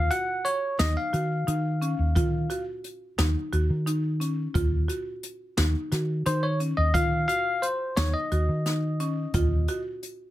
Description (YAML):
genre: progressive instrumental, band music in an uneven meter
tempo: 175 BPM (eighths)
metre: 7/8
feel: straight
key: Eb dorian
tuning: A4 = 440 Hz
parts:
  - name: bell-like tine electric piano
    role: melody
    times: 0.0-2.6, 6.3-9.8 s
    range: C5 to Gb5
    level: -28 LUFS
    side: left 1 dB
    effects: plate reverb
  - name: hollow-body short-scale fingered electric bass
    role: bass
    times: 0.0-9.7 s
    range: Eb2 to Eb3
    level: -25 LUFS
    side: equal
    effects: none
  - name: buzzing marimba with medium hard mallets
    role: arpeggios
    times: 0.1-10.2 s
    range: Db4 to Gb4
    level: -32 LUFS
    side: right 1 dB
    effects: plate reverb
  - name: jazz brush drum kit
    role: drums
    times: 0.1-10.2 s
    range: hi-hat, kick drum, snare drum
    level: -30 LUFS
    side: equal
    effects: none
room: light reverb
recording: none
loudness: -24 LUFS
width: side -14 dB against mid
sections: 0.0-10.3 A section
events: tine electric piano solo 0.0-10.3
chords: 0.0 Ebmadd9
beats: 0.11 0.45 0.79 1.14 1.48 1.82 | 2.16 2.50 2.84 3.19 3.53 3.87 4.21 | 4.55 4.90 5.24 5.58 5.92 6.27 6.61 | 6.95 7.29 7.63 7.98 8.32 8.66 9.01 | 9.35 9.69 10.03